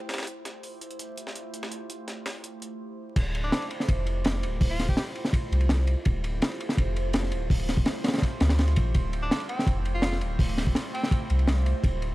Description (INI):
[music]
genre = drum and bass, jungle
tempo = 166 BPM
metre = 4/4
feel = straight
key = D minor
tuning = A4 = 440 Hz
[part]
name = warbly tape-like pad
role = sustained chords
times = 0.0-12.1 s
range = A3 to C5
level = -37 LUFS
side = right 2 dB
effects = chorus, built-in reverb, phaser
[part]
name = breakbeat sampler-style drum kit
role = drums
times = 0.1-2.7 s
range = hi-hat, snare drum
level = -36 LUFS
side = equal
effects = high-pass filter on snare, high-pass filter on hats
[part]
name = soft dub sub bass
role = bass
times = 3.2-12.1 s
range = D1 to D2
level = -26 LUFS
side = equal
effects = none
[part]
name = crunchy breakbeat drum kit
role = drums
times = 3.2-12.1 s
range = crash cymbal, hi-hat, kick drum, ride cymbal, snare drum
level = -26 LUFS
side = equal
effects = none
[part]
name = bright tenor saxophone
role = melody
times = 3.4-5.0, 9.2-11.2 s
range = C4 to G4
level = -37 LUFS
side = equal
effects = vintage 12-bit sampler grit, dub echo
[sound]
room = studio ambience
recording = vinyl crackle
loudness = -24 LUFS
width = side -18 dB against mid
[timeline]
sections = 0.0-3.2 A section; 3.2-12.1 B section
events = drop 3.2-12.1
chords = 0.0 Fmaj9/A; 3.2 Dm11